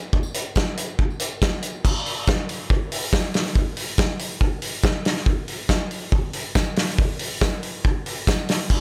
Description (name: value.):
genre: rock.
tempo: 140 BPM.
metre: 4/4.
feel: straight.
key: none.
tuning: none.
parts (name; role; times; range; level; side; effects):
tambourine; percussion; 0.0-8.4 s; none; -42 LUFS; equal; none.
loose indie drum kit; drums; 0.1-8.8 s; crash cymbal, hi-hat, kick drum, snare drum; -23 LUFS; equal; none.
room: little or no reverb.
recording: none.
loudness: -23 LUFS.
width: mono.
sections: 0.0-1.8 A section; 1.8-8.8 B section.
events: none.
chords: none.